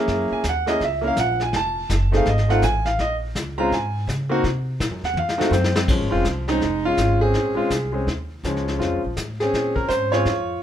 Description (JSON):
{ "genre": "jazz piano trio", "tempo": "165 BPM", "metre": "4/4", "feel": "swing 64% on 8ths", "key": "Bb minor", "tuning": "A4 = 437 Hz", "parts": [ { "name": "clear concert grand piano", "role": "melody", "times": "0.0-10.6 s", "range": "F3 to Bb5", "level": "-21 LUFS", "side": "equal", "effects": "none" }, { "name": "upright bass", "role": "bass", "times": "0.1-10.6 s", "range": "F1 to Db3", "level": "-24 LUFS", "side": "equal", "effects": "none" }, { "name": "vintage brush drum kit", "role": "drums", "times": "0.1-10.6 s", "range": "brushed snare drum, crash cymbal, hi-hat, kick drum, snare drum, toms", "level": "-27 LUFS", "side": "left 2 dB", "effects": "none" } ], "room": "moderate club reverb, RT60 0.8 s", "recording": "minimal, uncompressed stereo recording", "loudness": "-19 LUFS", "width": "side -10 dB against mid", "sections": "0.0-5.9 A section; 5.9-10.6 B section", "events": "grand piano solo 0.0-5.9; drum fill 5.2-5.9", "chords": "0.1 Gb7; 1.5 F7#9; 3.0 Bbm7; 4.4 Cm7b5; 5.2 F5; 5.9 Bbm9" }